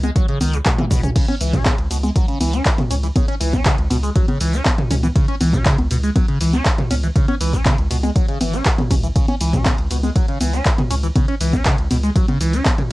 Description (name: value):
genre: acid house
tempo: 120 BPM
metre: 4/4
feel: straight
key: C# minor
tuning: A4 = 440 Hz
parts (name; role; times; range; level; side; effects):
- liquid acid bass; riff; 0.0-12.8 s; B2 to C#4; -23 LUFS; equal; phaser, overdrive, analog chorus, cassette tape, tape echo
- round analog bass; bass; 0.0-12.6 s; G#1 to C#2; -21 LUFS; equal; tube saturation, sidechain pumping
- punchy analog drum machine; drums; 0.0-12.9 s; cabasa, congas, crash cymbal, handclaps, hi-hat, ride cymbal, toms; -21 LUFS; equal; cassette tape
- electronic kick drum; drums; 0.2-12.8 s; none; -18 LUFS; equal; cassette tape
room: light reverb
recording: home recording on cassette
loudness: -15 LUFS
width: side -19 dB against mid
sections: 0.0-12.9 A section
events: drum fill 0.7-1.2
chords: 0.0 C#m